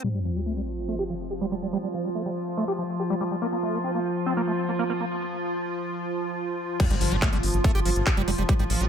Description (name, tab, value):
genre	psychedelic trance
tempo	142 BPM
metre	4/4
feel	straight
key	unclear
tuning	A4 = 440 Hz
part	evolving wavetable pad	sustained chords	0.0-8.9 s	F3 to F4	-28 LUFS	right 1 dB	chorus, built-in reverb, sidechain pumping
part	liquid acid bass	riff	0.0-8.9 s	F3 to G4	-29 LUFS	moving between left 6 dB and right 6 dB	chorus, auto-pan, sidechain pumping, ping-pong delay
part	sub drop and impact	sound effects	0.0-1.7, 6.8-8.5 s	none	-32 LUFS	equal	none
part	electronic kick drum	drums	6.8-8.6 s	none	-24 LUFS	equal	none
part	techno drum kit	drums	6.8-8.9 s	crash cymbal, handclaps, hi-hat	-30 LUFS	left 1 dB	low-pass filter on hats, low-pass filter on snare, low-pass filter on cymbals
part	round analog bass	bass	6.9-8.9 s	F1 to A1	-26 LUFS	equal	none
room	light reverb, digital ambience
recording	low-pass filter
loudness	-24 LUFS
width	side -8 dB against mid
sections	0.0-6.8 A section; 6.8-8.9 B section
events	impact 0.0-1.7, 6.8-8.5; filter sweep on drum 0.0-6.8; filter sweep 0.0-6.8; break 5.1-6.8; drop 6.8-8.9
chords	0.0 Fsus2; 3.4 N.C.; 6.8 Fadd9